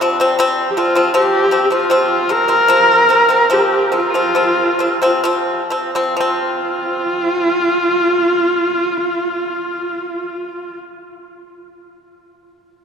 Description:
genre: mongolian traditional, Mongolian folk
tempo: 62-82 BPM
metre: 4/4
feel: straight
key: unclear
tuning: A4 = 439 Hz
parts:
  - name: pipa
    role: arpeggios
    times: 0.0-10.8 s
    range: F3 to C4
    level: -16 LUFS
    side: left 1 dB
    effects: none
  - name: clear horsehead fiddle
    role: melody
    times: 0.7-10.8 s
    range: F4 to Bb4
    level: -15 LUFS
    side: equal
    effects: none
room: wet cathedral reverb, RT60 5.5 s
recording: recorded in a church or concert hall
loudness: -13 LUFS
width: side -7 dB against mid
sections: 0.0-6.2 A section; 6.2-10.1 B section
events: slowing down 0.0-6.2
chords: 0.0 F5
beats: 0.40 1.15 1.91 | 2.69 3.50 4.35 5.24 | 6.18 7.16 8.13 9.10

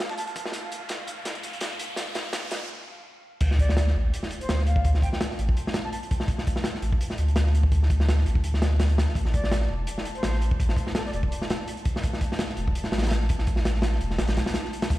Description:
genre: drum and bass, jungle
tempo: 167 BPM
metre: 4/4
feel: swing 55% on 16ths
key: D minor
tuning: A4 = 440 Hz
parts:
  - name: crunchy breakbeat drum kit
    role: drums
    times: 0.0-15.0 s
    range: crash cymbal, hi-hat, kick drum, snare drum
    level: -26 LUFS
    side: equal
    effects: high-pass filter on kick, high-pass filter on hats, high-pass filter on cymbals, high-pass filter on snare, high-pass filter on room
  - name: dusty soul sampler-style drum kit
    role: drums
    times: 0.0-2.6, 14.9-15.0 s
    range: hi-hat, snare drum, tambourine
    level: -40 LUFS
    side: right 1 dB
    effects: high-pass filter on perc, high-pass filter on snare, high-pass filter on hats
  - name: riser and sub drop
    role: sound effects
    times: 0.0-4.8 s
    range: none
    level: -36 LUFS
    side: equal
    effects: none
  - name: wind-like tuned noise texture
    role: texture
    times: 0.0-15.0 s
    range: F5 to A5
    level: -42 LUFS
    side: left 1 dB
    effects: built-in reverb
  - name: silver concert flute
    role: melody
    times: 0.1-0.2, 3.6-6.0, 9.3-11.2 s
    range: A4 to A5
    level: -38 LUFS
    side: equal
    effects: dub echo
  - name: saturated sub bass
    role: bass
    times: 3.4-15.0 s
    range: E1 to D2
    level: -23 LUFS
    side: equal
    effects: none
room: light reverb, studio reverb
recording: played on a big sound system in a bare room, large studio reverb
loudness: -23 LUFS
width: side -17 dB against mid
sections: 0.0-3.4 A section; 3.4-15.0 B section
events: build-up 0.0-3.4; riser 0.0-2.7; drum fill 0.5-2.7; break 2.7-3.4; drop 3.4-15.0; impact 3.4-4.8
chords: 0.0 N.C.; 3.4 D5; 9.2 N.C.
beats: 0.18 | 0.54 0.90 1.25 1.61 | 1.97 2.33 2.69 3.05 | 3.41 3.77 4.13 4.49 | 4.85 5.21 5.57 5.92 | 6.29 6.64 7.00 7.36 | 7.72 8.08 8.44 8.80 | 9.16 9.52 9.88 10.24 | 10.60 10.96 11.31 11.67 | 12.03 12.39 12.75 13.11 | 13.47 13.83 14.19 14.55 | 14.91

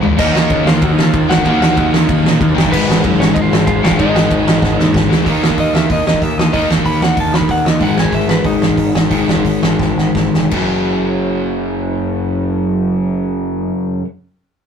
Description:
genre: punk rock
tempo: 160-190 BPM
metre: 4/4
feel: straight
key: F# major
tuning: A4 = 438 Hz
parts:
  - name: distorted electric guitar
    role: riff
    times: 0.0-5.3 s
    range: G#2 to D#4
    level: -24 LUFS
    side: left 1 dB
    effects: none
  - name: overdriven semi-hollow guitar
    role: riff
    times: 0.0-14.0 s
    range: F#2 to D#4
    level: -18 LUFS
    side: left 5 dB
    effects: none
  - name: growling picked electric bass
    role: bass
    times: 0.0-13.7 s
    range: E#1 to C#3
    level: -21 LUFS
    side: left 1 dB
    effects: overdrive
  - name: loose indie drum kit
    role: drums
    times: 0.0-10.6 s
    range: crash cymbal, hi-hat, kick drum, ride cymbal, snare drum, toms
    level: -15 LUFS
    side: right 2 dB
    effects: none
  - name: lightly driven lead guitar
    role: melody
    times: 0.2-9.4 s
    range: B3 to B5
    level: -19 LUFS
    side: left 1 dB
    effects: none
  - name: crunchy overdriven guitar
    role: riff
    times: 0.2-14.0 s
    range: F#2 to D#4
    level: -19 LUFS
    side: right 3 dB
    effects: none
room: light reverb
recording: rough rehearsal-room recording, tube saturation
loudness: -12 LUFS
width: side -7 dB against mid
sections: 0.0-5.3 A section; 5.3-10.5 B section; 10.5-13.5 C section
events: drum fill 0.0, 4.6-5.3, 9.8-10.5; lead electric guitar solo 5.3-10.5; slowing down 7.8-10.5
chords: 0.2 D#m; 2.7 G#m; 5.3 D#5; 7.8 G#5; 10.5 F#5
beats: | 0.19 0.50 0.82 1.14 | 1.45 1.77 2.09 2.40 | 2.72 3.04 3.35 3.67 | 3.99 4.30 4.62 4.94 | 5.26 5.58 5.89 6.21 | 6.53 6.85 7.17 7.49 | 7.81 8.13 8.45 8.78 | 9.11 9.45 9.80 10.15 | 10.52 10.90 11.28 11.65 | 12.03 12.40 12.78 13.16

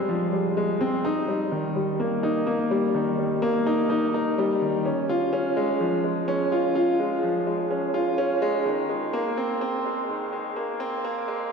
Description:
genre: electronica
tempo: 126 BPM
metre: 4/4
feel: straight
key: unclear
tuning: A4 = 440 Hz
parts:
  - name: clear baby grand piano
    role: solo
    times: 0.0-11.5 s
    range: Eb3 to F4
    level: -22 LUFS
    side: equal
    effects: none
room: wet concert hall reverb, RT60 2.5 s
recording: high-pass filter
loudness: -22 LUFS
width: side -5 dB against mid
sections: 0.0-11.5 A section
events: build-up 0.0-11.5; filter sweep 0.0-11.5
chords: none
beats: 0.09 0.57 | 1.04 1.52 2.00 2.47 | 2.95 3.43 3.90 4.38 | 4.85 5.33 5.81 6.28 | 6.76 7.24 7.71 8.19 | 8.66 9.14 9.62 10.09 | 10.57 11.04 11.52

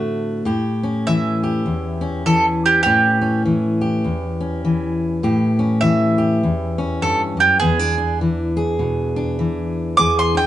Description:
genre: acoustic country blues, solo or duo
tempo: 101 BPM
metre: 4/4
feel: swing 60% on 8ths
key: A mixolydian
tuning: A4 = 442 Hz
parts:
  - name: bowl-back mandolin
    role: melody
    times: 0.0-10.5 s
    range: G4 to D6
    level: -17 LUFS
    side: right 3 dB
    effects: none
  - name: fingerpicked steel-string acoustic guitar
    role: accompaniment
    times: 0.0-10.5 s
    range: E2 to G#4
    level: -18 LUFS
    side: left 1 dB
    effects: none
room: moderate studio reverb, RT60 0.6 s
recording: band playing live in one room, nothing above 10.7 kHz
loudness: -16 LUFS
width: side -12 dB against mid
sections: 0.0-10.5 A section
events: mandolin solo 0.0-10.5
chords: 0.5 A7; 7.6 E7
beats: | 0.47 1.07 1.66 2.26 | 2.85 3.45 4.04 4.63 | 5.23 5.82 6.42 7.01 | 7.61 8.20 8.79 9.39 | 9.98

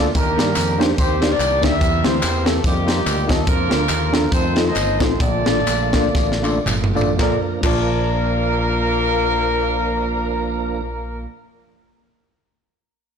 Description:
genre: uptempo gospel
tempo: 108-144 BPM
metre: 4/4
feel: swing 58% on 8ths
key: Bb major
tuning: A4 = 439 Hz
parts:
  - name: mellow horn section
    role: melody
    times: 0.0-11.3 s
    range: G3 to E5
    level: -22 LUFS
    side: equal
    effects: none
  - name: tine electric piano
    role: accompaniment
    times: 0.0-11.3 s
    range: Bb1 to A5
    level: -22 LUFS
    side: left 2 dB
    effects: phaser
  - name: tonewheel organ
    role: sustained chords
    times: 0.0-10.8 s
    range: D3 to Bb4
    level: -28 LUFS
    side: right 5 dB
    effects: overdrive, chorus vibrato, slow rotary speaker
  - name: fingered electric bass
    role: bass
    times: 0.0-11.3 s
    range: G1 to G2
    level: -23 LUFS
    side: equal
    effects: transformer saturation
  - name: crisp fusion drum kit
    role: drums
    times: 0.1-7.8 s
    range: crash cymbal, hi-hat, kick drum, snare drum, toms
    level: -21 LUFS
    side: equal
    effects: none
  - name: tambourine and handclaps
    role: percussion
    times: 0.1-7.8 s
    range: none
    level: -29 LUFS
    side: left 1 dB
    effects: none
room: light reverb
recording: blown-out, overdriven recording, overdrive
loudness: -16 LUFS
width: side -7 dB against mid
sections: 0.1-7.2 A section; 7.2-11.6 B section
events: slowing down 3.5-7.2; drum fill 6.1-7.2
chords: 0.1 Ebmaj7; 1.8 C7; 2.6 F9sus4; 3.5 Bb; 4.3 F7; 5.2 Bbmaj7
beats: | 0.14 0.56 0.97 1.39 | 1.81 2.22 2.64 3.06 | 3.47 3.89 4.32 4.75 | 5.20 5.66 6.14 6.65 | 7.19 7.75 8.30 8.86 | 9.42 9.97 10.53 11.09

